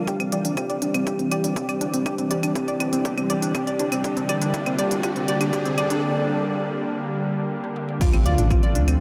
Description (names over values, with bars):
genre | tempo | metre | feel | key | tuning
melodic techno | 121 BPM | 4/4 | straight | unclear | A4 = 440 Hz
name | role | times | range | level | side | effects
lush unison pad | sustained chords | 0.0-9.0 s | D3 to G4 | -29 LUFS | equal | chorus, sidechain pumping
soft round pluck | arpeggios | 0.0-9.0 s | C4 to D5 | -28 LUFS | equal | chorus, sidechain pumping, tape echo
unison lead | melody | 0.1-8.8 s | F4 to G4 | -34 LUFS | equal | lush chorus, vintage 12-bit sampler grit, sidechain pumping, analog delay
electronic kick drum | drums | 0.1-8.6 s | none | -27 LUFS | equal | overdrive, high-pass filter on kick
techno drum kit | drums | 0.1-9.0 s | claves, crash cymbal, hi-hat, toms | -34 LUFS | equal | overdrive, high-pass filter on toms, high-pass filter on perc, high-pass filter on hats, high-pass filter on cymbals
riser and impact | sound effects | 2.8-9.0 s | none | -34 LUFS | equal | none
dark detuned synth bell | second line | 8.0-8.8 s | F5 | -36 LUFS | equal | chorus, sidechain pumping, tape echo
dark detuned saw bass | bass | 8.3-9.0 s | A1 to D2 | -23 LUFS | equal | tube saturation, sidechain pumping
room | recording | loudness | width
wet huge ambient reverb, RT60 6.3 s | dreamy mix soaked in reverb | -23 LUFS | mono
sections
0.0-8.0 A section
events
build-up 0.0-8.0; drum fill 0.0-6.0, 7.6-8.0; filter sweep on synth arpeggio sound 0.0-8.0; filter sweep on analog synth lead 0.0-8.0; filter sweep on analog synth pad 0.0-8.0; riser 2.8-6.0; impact 8.0-9.0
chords
0.1 C; 4.0 Gm; 8.0 Dm